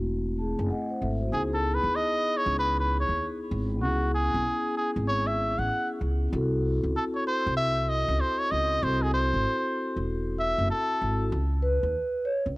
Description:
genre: hip hop, jazz-hop.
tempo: 96 BPM.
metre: 4/4.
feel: swing 63% on 16ths.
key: unclear.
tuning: A4 = 440 Hz.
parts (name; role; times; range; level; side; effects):
vibraphone with soft mallets; accompaniment; 0.0-12.4 s; A3 to A5; -30 LUFS; left 1 dB; cassette tape.
upright bass; bass; 0.0-12.6 s; E1 to D#2; -28 LUFS; equal; none.
trumpet with cup mute; melody; 1.3-11.3 s; F#4 to F#5; -27 LUFS; equal; analog delay.
room: light reverb.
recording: home recording on cassette.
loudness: -24 LUFS.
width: side -22 dB against mid.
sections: 0.0-11.3 A section; 11.3-12.6 A section.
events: muted trumpet solo 0.0-11.3; vibraphone fill 0.1-1.3; vibraphone solo 11.3-12.6.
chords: 0.0 G#7b9b13; 1.3 C#m9; 6.3 G#7b9b13/B# (rootless); 11.3 N.C..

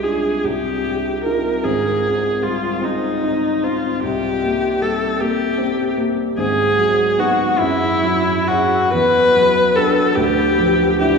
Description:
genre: classical, impressionist duo for viola and grand piano.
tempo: 42-52 BPM (dotted quarters).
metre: 6/8.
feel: rubato.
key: C minor.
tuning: A4 = 439 Hz.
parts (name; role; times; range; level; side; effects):
rich viola; melody; 0.0-11.2 s; Eb4 to B4; -17 LUFS; left 2 dB; none.
dark grand piano; accompaniment; 0.0-11.2 s; Ab1 to Ab4; -20 LUFS; right 1 dB; none.
room: wet cathedral reverb, RT60 4.5 s.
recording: recorded in a church or concert hall, small room reverb.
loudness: -15 LUFS.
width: side -5 dB against mid.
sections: 0.0-11.2 A section.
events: none.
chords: 0.4 Cmadd11; 1.6 Abmaj7; 4.0 C5; 6.4 Abm7; 7.6 Gbsus2; 8.9 Em9; 10.2 Dmadd9.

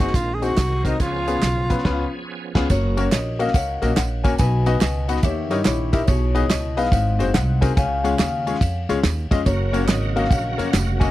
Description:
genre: uptempo gospel.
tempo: 142 BPM.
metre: 4/4.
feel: swing 65% on 8ths.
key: F# major.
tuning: A4 = 440 Hz.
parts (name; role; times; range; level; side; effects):
warm tenor saxophone; melody; 0.0-2.2 s; D#4 to G#4; -25 LUFS; equal; none.
bright baby grand piano; accompaniment; 0.0-11.1 s; G#2 to E5; -24 LUFS; left 4 dB; none.
bright tonewheel organ; sustained chords; 0.0-2.7, 9.5-11.1 s; C#3 to A#4; -30 LUFS; right 5 dB; slow rotary speaker, chorus vibrato.
upright bass; bass; 0.0-11.1 s; E#1 to G2; -23 LUFS; right 1 dB; none.
warm soul drum kit; drums; 0.0-11.1 s; crash cymbal, hi-hat, kick drum, ride cymbal, snare drum; -21 LUFS; right 1 dB; none.
tambourine and handclaps; percussion; 0.0-11.1 s; none; -34 LUFS; right 8 dB; none.
concert harp; melody; 2.7-11.1 s; E4 to G#5; -26 LUFS; left 2 dB; none.
room: little or no reverb.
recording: dry, close 1970s-style studio recording.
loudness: -18 LUFS.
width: side -15 dB against mid.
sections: 0.0-2.7 A section; 2.7-11.1 B section.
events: band accent 1.9-2.7.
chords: 0.0 G#7; 1.0 C#7; 2.7 F#; 4.4 B; 5.2 D#7b9; 6.1 G#m/B; 6.9 G#7; 7.8 C#; 9.5 F#.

